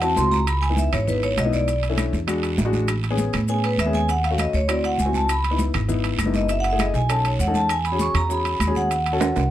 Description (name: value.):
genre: Afro-Cuban jazz.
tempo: 199 BPM.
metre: 4/4.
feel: straight.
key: C# minor.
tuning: A4 = 440 Hz.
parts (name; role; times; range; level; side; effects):
vibraphone with medium hard mallets; melody; 0.0-9.5 s; B4 to C#6; -23 LUFS; right 1 dB; none.
warm baby grand piano; accompaniment; 0.0-9.4 s; G#3 to A4; -26 LUFS; left 4 dB; none.
upright bass; bass; 0.0-9.5 s; F#1 to A2; -23 LUFS; right 1 dB; none.
congas; percussion; 0.0-9.4 s; none; -28 LUFS; equal; none.
maracas; percussion; 0.0-9.5 s; none; -40 LUFS; left 7 dB; none.
timbales; percussion; 0.0-9.4 s; none; -30 LUFS; right 8 dB; none.
guiro; percussion; 0.2-9.5 s; none; -37 LUFS; right 7 dB; none.
claves; percussion; 0.5-9.4 s; none; -36 LUFS; left 5 dB; none.
room: light reverb.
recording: dark, warm production.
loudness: -19 LUFS.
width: side -12 dB against mid.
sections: 0.5-9.5 A section.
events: vibraphone solo 0.0-9.5; drum fill 9.2.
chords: 0.5 C#m9; 1.7 Bm11; 2.3 E9; 2.9 Amaj7; 4.1 D#m7b5; 4.7 D9; 5.3 C#m9; 6.5 F#m7; 7.1 B9; 7.7 E6; 8.9 D#m7b5.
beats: 0.17 | 0.47 0.78 1.08 1.38 | 1.68 1.98 2.28 2.58 | 2.88 3.19 3.49 3.79 | 4.09 4.39 4.69 4.99 | 5.29 5.59 5.89 6.20 | 6.50 6.80 7.10 7.40 | 7.70 8.00 8.30 8.60 | 8.91 9.21.